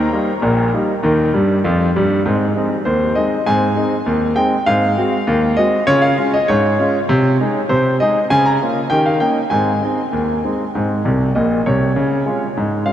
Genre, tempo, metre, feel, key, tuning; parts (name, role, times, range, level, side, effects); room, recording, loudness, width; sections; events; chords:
ragtime piano; 99 BPM; 2/4; straight; Ab major; A4 = 440 Hz
clear concert grand piano; solo; 0.0-12.9 s; Bb1 to Bb5; -14 LUFS; equal; analog delay
wet huge ambient reverb, RT60 5.8 s; dreamy mix soaked in reverb, cassette tape; -14 LUFS; side -10 dB against mid
0.0-2.3 A section; 2.3-12.0 B section
grand piano fill 1.3-2.3, 11.1-12.0
0.0 Eb; 2.3 Ab; 4.7 Ab7; 5.9 Db; 7.1 Ab/C; 8.3 Bbm/Db; 8.9 Eb7; 9.5 Ab; 12.0 Db